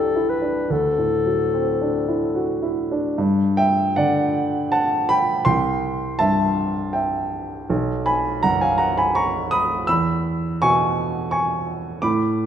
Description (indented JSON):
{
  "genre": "classical, impressionist duo for clarinet and grand piano",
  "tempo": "72-85 BPM",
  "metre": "3/4",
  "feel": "rubato",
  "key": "unclear",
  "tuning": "A4 = 440 Hz",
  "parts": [
    { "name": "warm clarinet", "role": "melody", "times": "0.0-2.8 s", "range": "A4 to B4", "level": "-22 LUFS", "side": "left 7 dB", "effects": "none" },
    { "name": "warm grand piano", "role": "accompaniment", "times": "0.0-12.5 s", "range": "B1 to E6", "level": "-19 LUFS", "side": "right 1 dB", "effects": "none" }
  ],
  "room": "wet recital hall reverb, RT60 1.5 s",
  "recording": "none",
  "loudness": "-18 LUFS",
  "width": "side -9 dB against mid",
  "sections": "0.0-3.2 A section; 3.2-12.5 B section",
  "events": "none",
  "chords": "0.0 Cmaj9; 0.7 D9; 3.2 G5; 5.5 C; 7.7 B5; 9.9 E"
}